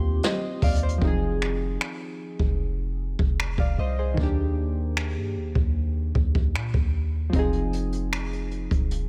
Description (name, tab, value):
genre	contemporary R&B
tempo	76 BPM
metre	4/4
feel	straight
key	unclear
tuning	A4 = 440 Hz
part	warm analog keys	accompaniment	0.0-9.1 s	Eb3 to F5	-33 LUFS	equal	chorus
part	deep dark ambient pad	sustained chords	0.0-1.0 s	Eb3 to G4	-38 LUFS	equal	chorus, built-in reverb
part	warm 808-style bass	bass	0.0-9.1 s	Eb1 to Bb2	-29 LUFS	equal	none
part	jazz brush drum kit	drums	0.2-9.1 s	finger snaps, hi-hat, kick drum, snare drum	-28 LUFS	equal	none
room	small room ambience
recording	none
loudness	-25 LUFS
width	mono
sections	0.0-1.0 A section; 1.0-9.1 B section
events	none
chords	0.0 Eb69; 1.0 Fm7; 4.2 Ebmaj7; 7.3 Fm7